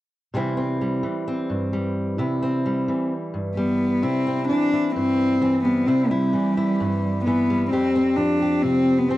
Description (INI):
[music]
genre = folk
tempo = 130 BPM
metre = 4/4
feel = straight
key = C major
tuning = A4 = 442 Hz
[part]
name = fingerpicked steel-string acoustic guitar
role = accompaniment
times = 0.3-9.2 s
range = F2 to G4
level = -23 LUFS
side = equal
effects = none
[part]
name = warm cello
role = melody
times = 3.6-9.2 s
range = G3 to D4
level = -20 LUFS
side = left 1 dB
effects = none
[sound]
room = light reverb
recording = dry, close 1970s-style studio recording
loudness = -20 LUFS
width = side -16 dB against mid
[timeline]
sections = 0.3-4.0 A section; 4.0-9.2 B section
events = none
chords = 0.3 C; 7.7 Fsus2